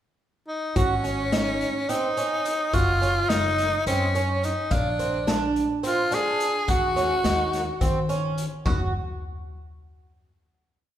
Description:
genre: progressive instrumental, band music in an uneven meter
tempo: 213 BPM (eighths)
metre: 7/8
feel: straight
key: unclear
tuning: A4 = 441 Hz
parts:
  - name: raspy tenor saxophone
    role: melody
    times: 0.5-8.1 s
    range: Db4 to Ab4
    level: -24 LUFS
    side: equal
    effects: none
  - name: fingerpicked twelve-string acoustic guitar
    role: arpeggios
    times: 0.8-8.9 s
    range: C4 to Gb4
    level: -28 LUFS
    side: right 4 dB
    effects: none
  - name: upright bass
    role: bass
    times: 0.8-8.9 s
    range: Gb1 to Eb3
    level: -29 LUFS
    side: equal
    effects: none
  - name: raw garage drum kit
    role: drums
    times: 0.8-8.8 s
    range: hi-hat, kick drum, snare drum, splash cymbal, toms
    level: -29 LUFS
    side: left 2 dB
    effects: none
room: wet recital hall reverb, RT60 1.7 s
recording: recorded in a church or concert hall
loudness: -22 LUFS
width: side -11 dB against mid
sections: 0.0-0.8 pickup bar; 0.8-8.7 A section; 8.7-10.6 final note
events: none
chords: 0.0 N.C.; 0.8 Absus4; 2.7 Gb5; 4.7 Bb7; 6.7 Ebm7; 8.7 N.C.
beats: 0.20 0.48 | 0.76 1.04 1.33 1.61 1.89 2.18 2.46 | 2.74 3.02 3.31 3.59 3.87 4.15 4.43 | 4.71 5.00 5.28 5.56 5.84 6.12 6.40 | 6.69 6.97 7.25 7.53 7.81 8.09 8.37 | 8.65

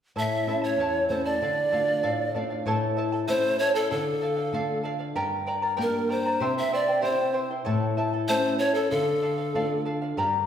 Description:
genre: andean folk, Andean ensemble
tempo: 96 BPM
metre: 2/4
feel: straight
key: D minor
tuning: A4 = 440 Hz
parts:
  - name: breathy pan flute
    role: melody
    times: 0.2-9.8 s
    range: A4 to E5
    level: -25 LUFS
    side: equal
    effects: none
  - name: charango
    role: accompaniment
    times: 0.2-10.5 s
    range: E4 to Bb5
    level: -29 LUFS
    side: right 1 dB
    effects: none
  - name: flamenco guitar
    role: accompaniment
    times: 0.2-10.5 s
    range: E2 to G4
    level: -29 LUFS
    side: left 2 dB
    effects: none
room: wet recital hall reverb, RT60 1.4 s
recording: recorded in a church or concert hall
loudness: -23 LUFS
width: side -9 dB against mid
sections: 0.2-2.7 A section; 2.7-10.5 B section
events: none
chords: 0.2 A; 1.4 Dm; 2.7 A; 3.9 Dm; 5.2 Gm; 6.4 C; 7.7 A; 8.9 Dm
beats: | 0.16 0.79 | 1.41 2.04 | 2.66 3.28 | 3.91 4.53 | 5.16 5.78 | 6.41 7.03 | 7.66 8.28 | 8.91 9.53 | 10.16

